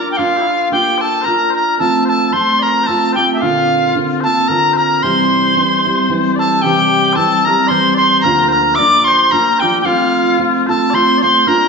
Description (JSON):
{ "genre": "celtic folk", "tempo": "112 BPM", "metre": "3/4", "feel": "swing 54% on 8ths", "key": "C mixolydian", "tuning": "A4 = 440 Hz", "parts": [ { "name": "bright reedy wooden whistle", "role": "melody", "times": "0.0-11.7 s", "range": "E5 to D6", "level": "-13 LUFS", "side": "right 1 dB", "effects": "none" }, { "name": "mellow small bagpipes", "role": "second line", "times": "0.0-11.7 s", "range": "E4 to E5", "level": "-19 LUFS", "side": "left 6 dB", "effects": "none" }, { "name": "fingerpicked steel-string acoustic guitar", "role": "accompaniment", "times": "0.0-11.7 s", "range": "D2 to Bb4", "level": "-16 LUFS", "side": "right 1 dB", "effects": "none" } ], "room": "wet large studio reverb, RT60 1.4 s", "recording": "band playing live in one room, nothing above 7.5 kHz", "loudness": "-11 LUFS", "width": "side -4 dB against mid", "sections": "0.0-6.6 A section; 6.6-11.7 A section", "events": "none", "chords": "0.0 Bb; 1.8 F; 3.4 Bbadd9; 5.0 C; 8.2 Bb/D; 9.9 F" }